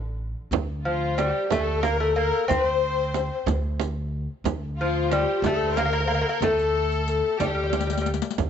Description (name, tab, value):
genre	Persian modal ensemble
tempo	61 BPM (dotted quarters)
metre	6/8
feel	straight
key	D dastgah shur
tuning	A4 = 439 Hz
part	upright bass	bass	0.0-8.5 s	A1 to D2	-28 LUFS	equal	none
part	frame drum	percussion	0.5-8.5 s	none	-28 LUFS	right 10 dB	none
part	riq	percussion	0.5-8.5 s	none	-33 LUFS	left 11 dB	none
part	rich chamber violin section	second line	0.8-8.1 s	F4 to C5	-30 LUFS	left 3 dB	none
part	lute	melody	0.9-8.1 s	F3 to C4	-25 LUFS	equal	none
part	breathy mellow low ney	second line	0.9-8.1 s	F4 to C5	-29 LUFS	left 13 dB	none
room	light reverb, studio reverb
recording	1960s-style stereo with parts hard left and right, nothing above 7.9 kHz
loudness	-22 LUFS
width	side -8 dB against mid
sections	0.5-8.5 A section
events	drum fill 7.7-8.4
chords	none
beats	| 0.52 1.50 | 2.49 3.47 | 4.45 5.44 | 6.42 7.40 | 8.39